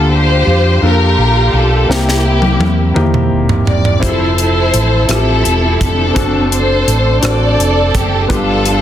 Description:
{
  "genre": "slow gospel",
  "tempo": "56 BPM (dotted quarters)",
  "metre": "6/8",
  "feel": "straight",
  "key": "F major",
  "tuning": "A4 = 440 Hz",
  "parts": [
    { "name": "warm studio string section", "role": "melody", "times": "0.0-8.8 s", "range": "Bb3 to D5", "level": "-14 LUFS", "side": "left 1 dB", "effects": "tape echo" },
    { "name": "clear grand piano", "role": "accompaniment", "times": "0.0-8.8 s", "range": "G2 to C5", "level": "-18 LUFS", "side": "left 2 dB", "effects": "none" },
    { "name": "mellow French horn section", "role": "sustained chords", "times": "0.0-8.8 s", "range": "D3 to F4", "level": "-26 LUFS", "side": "right 1 dB", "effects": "none" },
    { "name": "hollow-body short-scale fingered electric bass", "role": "bass", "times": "0.0-8.8 s", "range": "Eb1 to F2", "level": "-14 LUFS", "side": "equal", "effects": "none" },
    { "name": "crisp fusion drum kit", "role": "drums", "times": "1.9-8.8 s", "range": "hi-hat, kick drum, rim click, snare drum, toms", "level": "-17 LUFS", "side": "equal", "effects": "soft clipping on snare" },
    { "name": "bright tonewheel organ", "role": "sustained chords", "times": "4.0-8.8 s", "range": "E3 to A4", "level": "-25 LUFS", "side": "right 5 dB", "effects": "slow rotary speaker, chorus vibrato" }
  ],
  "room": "light reverb, small room ambience",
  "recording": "dense, heavily limited modern master",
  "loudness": "-10 LUFS",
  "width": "side -11 dB against mid",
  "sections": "0.0-8.8 A section",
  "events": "drum fill 1.9-4.0",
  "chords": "0.0 Gm7/D; 1.9 C7; 4.0 Fmaj7; 6.2 D7/F#; 8.3 G7",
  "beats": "0.82 | 1.89 2.96 | 4.03 5.09 | 6.16 7.23 | 8.29"
}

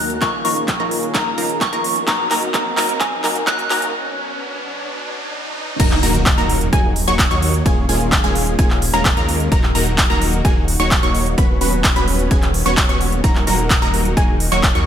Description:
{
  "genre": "EDM, festival progressive house",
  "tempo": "129 BPM",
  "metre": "4/4",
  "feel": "straight",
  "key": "Eb minor",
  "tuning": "A4 = 439 Hz",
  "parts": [
    { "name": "soft synth bell", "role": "melody", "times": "0.0-3.9 s", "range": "Ab5 to Gb6", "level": "-22 LUFS", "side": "equal", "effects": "chorus, phaser, dub echo" },
    { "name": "lush unison pad", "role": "sustained chords", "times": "0.0-14.9 s", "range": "Eb3 to Ab4", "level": "-29 LUFS", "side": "left 1 dB", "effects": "chorus, sidechain pumping" },
    { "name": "wide unison pluck", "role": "arpeggios", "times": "0.0-14.9 s", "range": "Ab5 to Db6", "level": "-24 LUFS", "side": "right 1 dB", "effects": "sidechain pumping, dub echo" },
    { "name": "supersaw stab", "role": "riff", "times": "0.0-14.9 s", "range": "F3 to Db5", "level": "-22 LUFS", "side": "equal", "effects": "sidechain pumping, low-pass filter, dub echo" },
    { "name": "wide detuned saw bass", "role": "bass", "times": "0.0-14.9 s", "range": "Eb1 to Eb2", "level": "-22 LUFS", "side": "equal", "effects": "chorus, tube saturation, sidechain pumping" },
    { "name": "riser and impact", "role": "sound effects", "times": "0.0-7.7 s", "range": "none", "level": "-27 LUFS", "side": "right 1 dB", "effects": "none" },
    { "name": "big-room dance drum kit", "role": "drums", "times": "0.1-14.8 s", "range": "crash cymbal, handclaps, hi-hat", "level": "-20 LUFS", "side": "equal", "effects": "overdrive" },
    { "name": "electronic kick drum", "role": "drums", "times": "0.2-14.7 s", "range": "none", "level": "-18 LUFS", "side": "equal", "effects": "none" }
  ],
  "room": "light reverb",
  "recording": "high-pass filter",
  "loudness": "-14 LUFS",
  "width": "side -9 dB against mid",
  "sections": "0.0-5.8 A section; 5.8-14.9 B section",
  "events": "build-up 0.0-5.8; drum fill 0.0-3.9; riser 0.0-5.8; filter sweep on analog synth pad 0.0-5.8; break 3.9-5.8; drop 5.8-14.9; impact 5.8-7.7",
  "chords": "0.2 Bbm7/Eb; 2.1 Ebm; 3.9 Bsus2; 5.8 Ebm; 7.7 Bbm7/Eb; 9.5 Ebm; 11.4 Bsus2/Eb; 13.2 Ebm",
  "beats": "| 0.22 0.68 1.15 1.61 | 2.08 2.54 3.01 3.47 | 3.94 4.40 4.87 5.33 | 5.80 6.26 6.73 7.19 | 7.66 8.12 8.59 9.05 | 9.52 9.98 10.45 10.91 | 11.38 11.84 12.31 12.77 | 13.24 13.70 14.17 14.63"
}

